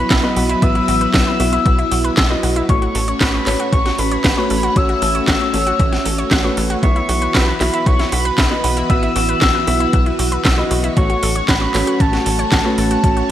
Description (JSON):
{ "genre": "italo disco", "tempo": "116 BPM", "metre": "4/4", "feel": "straight", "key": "unclear", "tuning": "A4 = 440 Hz", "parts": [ { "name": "soft octave-layered synth lead", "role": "melody", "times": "0.0-13.3 s", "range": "A5 to E6", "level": "-21 LUFS", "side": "left 2 dB", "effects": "chorus, phaser, digital delay" }, { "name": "string machine, full ensemble", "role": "sustained chords", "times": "0.0-13.3 s", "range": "E3 to C#5", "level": "-22 LUFS", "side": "right 1 dB", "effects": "ensemble chorus" }, { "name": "analog pluck", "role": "arpeggios", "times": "0.0-13.2 s", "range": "B3 to F#5", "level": "-26 LUFS", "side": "right 2 dB", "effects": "chorus, digital delay" }, { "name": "tight sequencer bass", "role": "bass", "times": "0.0-13.2 s", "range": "A1 to B1", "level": "-21 LUFS", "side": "equal", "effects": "tube saturation" }, { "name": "electronic kick drum", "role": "drums", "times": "0.1-13.1 s", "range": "none", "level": "-18 LUFS", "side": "equal", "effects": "none" }, { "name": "house drum kit", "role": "drums", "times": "0.1-13.3 s", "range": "handclaps, hi-hat, snare drum", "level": "-20 LUFS", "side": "equal", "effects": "gated reverb" }, { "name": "dark concert grand piano", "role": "stabs", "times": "0.2-13.3 s", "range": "A3 to E5", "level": "-23 LUFS", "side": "left 1 dB", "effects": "none" } ], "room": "moderate lush hall reverb, RT60 1.9 s", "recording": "bright 1980s-style digital production, vinyl crackle", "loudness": "-13 LUFS", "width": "side -11 dB against mid", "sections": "0.0-13.3 A section", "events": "none", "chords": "0.0 Bsus4; 2.7 F#m/A; 6.8 Bsus4; 11.0 F#m/A" }